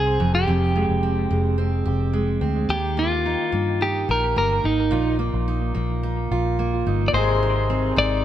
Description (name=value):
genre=acoustic pop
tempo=108 BPM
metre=4/4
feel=straight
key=Eb major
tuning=A4 = 441 Hz
part: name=clean electric guitar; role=melody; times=0.0-8.2 s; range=Eb4 to D5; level=-23 LUFS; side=left 1 dB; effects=analog delay
part: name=picked steel-string acoustic guitar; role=accompaniment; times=0.0-8.2 s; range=F2 to Ab4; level=-25 LUFS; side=right 3 dB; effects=analog delay
part: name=vintage muted fingered electric bass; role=bass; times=0.0-8.2 s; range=F1 to G2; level=-23 LUFS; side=left 1 dB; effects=none
part: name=bright grand piano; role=accompaniment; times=7.1-8.2 s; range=C4 to Eb5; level=-28 LUFS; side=left 4 dB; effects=none
part: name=hand-pumped harmonium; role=sustained chords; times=7.1-8.2 s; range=C3 to Ab4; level=-27 LUFS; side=left 2 dB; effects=none
room=light reverb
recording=echo-heavy mix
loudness=-19 LUFS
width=side -11 dB against mid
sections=0.0-7.1 A section; 7.1-8.2 B section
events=none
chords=0.2 Fmadd9; 2.7 Eb; 4.9 Bbsus4; 7.1 Ab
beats=| 0.46 1.02 1.58 2.13 | 2.69 3.24 3.80 4.36 | 4.91 5.47 6.02 6.58 | 7.13 7.69 8.24